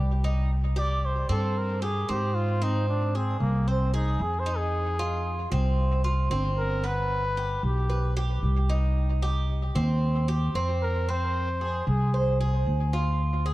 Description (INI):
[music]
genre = latin, Cuban son and guajira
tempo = 113 BPM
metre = 4/4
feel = straight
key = C minor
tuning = A4 = 439 Hz
[part]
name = Cuban tres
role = arpeggios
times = 0.0-13.5 s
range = B3 to C5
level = -32 LUFS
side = right 2 dB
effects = analog delay
[part]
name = upright bass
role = bass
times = 0.0-13.5 s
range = G1 to Ab2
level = -25 LUFS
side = equal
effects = none
[part]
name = breathy trumpet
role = melody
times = 0.8-12.4 s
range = Bb3 to D5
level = -32 LUFS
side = left 1 dB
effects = analog delay
[sound]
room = light reverb, small room ambience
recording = echo-heavy mix, cassette tape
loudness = -24 LUFS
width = side -17 dB against mid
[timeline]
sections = 0.5-13.5 A section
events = trumpet solo 0.5-13.5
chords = 0.0 N.C.; 0.5 C5; 2.6 Ab; 4.7 Fm; 6.8 G; 9.0 Cm; 11.1 Fm